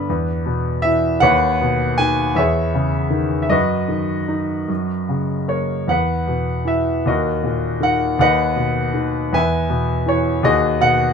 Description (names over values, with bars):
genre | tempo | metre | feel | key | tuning
classical, lyrical solo piano | 50-55 BPM (dotted quarters) | 6/8 | rubato | B major | A4 = 438 Hz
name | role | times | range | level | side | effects
clear concert grand piano | solo | 0.0-11.1 s | D#2 to G#5 | -16 LUFS | equal | none
room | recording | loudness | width
moderate studio reverb, RT60 0.7 s | minimal, uncompressed stereo recording | -16 LUFS | side -6 dB against mid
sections
0.0-11.1 A section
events
none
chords
0.1 E5; 1.2 Badd9/D#; 2.4 C#madd9/E; 3.5 B/F#; 4.7 F#; 5.9 Esus2; 7.1 D#m; 8.2 B/D#; 9.3 E; 10.4 B6/D#